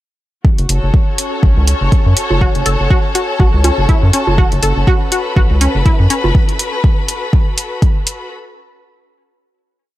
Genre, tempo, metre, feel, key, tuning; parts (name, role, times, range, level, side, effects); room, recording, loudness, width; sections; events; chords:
minimal techno; 122 BPM; 4/4; swing 56% on 16ths; F# minor; A4 = 439 Hz
electronic kick drum; drums; 0.4-7.9 s; -12 LUFS; equal
bubbling stepped-filter texture; texture; 0.7-6.4 s; C#4 to C#5; -26 LUFS; equal; chorus, built-in reverb, sidechain pumping
warm studio string section; texture; 0.4-8.3 s; F#4 to B5; -21 LUFS; left 2 dB; sidechain pumping
rubbery square bass; bass; 0.6-6.3 s; F#1 to F#2; -13 LUFS; equal; sidechain pumping
electronic hi-hat; drums; 0.6-8.2 s; -18 LUFS; equal; overdrive
congas; percussion; 2.3-6.3 s; -20 LUFS; right 4 dB; ping-pong delay
resonant blip pluck; riff; 2.4-6.1 s; C#4 to A4; -20 LUFS; equal; chorus, sidechain pumping, digital delay
little or no reverb; -11 LUFS; side -15 dB against mid
0.4-8.3 groove
0.4 F#m